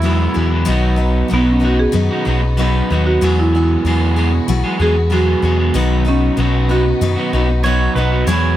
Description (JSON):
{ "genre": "folk rock and heartland rock", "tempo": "95 BPM", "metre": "4/4", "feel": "straight", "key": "unclear", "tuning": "A4 = 441 Hz", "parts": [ { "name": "marimba with medium mallets", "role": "melody", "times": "0.0-7.9 s", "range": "B3 to G#4", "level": "-19 LUFS", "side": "right 1 dB", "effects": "none" }, { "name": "pedal steel guitar", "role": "second line", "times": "0.0-0.5, 7.6-8.6 s", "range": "E4 to C#5", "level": "-21 LUFS", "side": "right 5 dB", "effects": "none" }, { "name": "picked steel-string acoustic guitar", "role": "accompaniment", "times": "0.0-8.6 s", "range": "B2 to B4", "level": "-22 LUFS", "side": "left 6 dB", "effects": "none" }, { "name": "warm studio string section", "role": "sustained chords", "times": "0.0-8.6 s", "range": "G#3 to F#4", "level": "-29 LUFS", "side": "left 1 dB", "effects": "none" }, { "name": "electric guitar at the edge of break-up", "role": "riff", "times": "0.0-8.6 s", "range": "E2 to G#4", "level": "-20 LUFS", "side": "right 4 dB", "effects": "none" }, { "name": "picked electric bass", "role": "bass", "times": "0.0-8.6 s", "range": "B1 to F#2", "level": "-16 LUFS", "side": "equal", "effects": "none" } ], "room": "light reverb", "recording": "none", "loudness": "-13 LUFS", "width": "side -13 dB against mid", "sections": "0.7-8.6 A section", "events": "marimba solo 0.7-8.6", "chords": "0.0 Eadd9; 0.7 B; 3.2 Eadd9; 5.7 B", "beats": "0.04 | 0.67 1.31 1.94 2.57 | 3.21 3.84 4.48 5.11 | 5.74 6.38 7.01 7.65 | 8.28" }